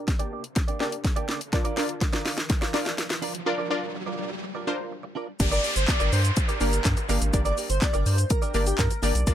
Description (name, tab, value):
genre	dance-pop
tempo	124 BPM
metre	4/4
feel	straight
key	G minor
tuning	A4 = 440 Hz
part	analog pluck	accompaniment	0.0-9.3 s	Bb3 to F5	-29 LUFS	equal	chorus, sidechain pumping, low-pass filter
part	riser and downlifter	sound effects	0.4-9.3 s	none	-34 LUFS	equal	none
part	direct-recorded clean electric guitar	riff	0.1-9.3 s	Bb3 to D5	-33 LUFS	right 4 dB	ensemble chorus, low-pass filter
part	house drum kit	drums	0.1-9.3 s	crash cymbal, handclaps, hi-hat, kick drum, shaker, snare drum	-25 LUFS	equal	overdrive
part	round analog bass	bass	5.4-9.3 s	G1 to G2	-24 LUFS	equal	sidechain pumping
part	airy dreamy lead	melody	5.5-9.1 s	G4 to D5	-30 LUFS	equal	chorus
room	light reverb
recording	none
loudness	-23 LUFS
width	side -11 dB against mid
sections	0.0-5.4 A section; 5.4-9.3 B section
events	build-up 0.0-5.4; drum fill 0.0-3.5; filter sweep 0.0-5.4; riser 0.4-5.4; break 3.5-5.4; drop 5.4-9.3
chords	0.0 Gm; 1.5 Bb; 5.4 Gm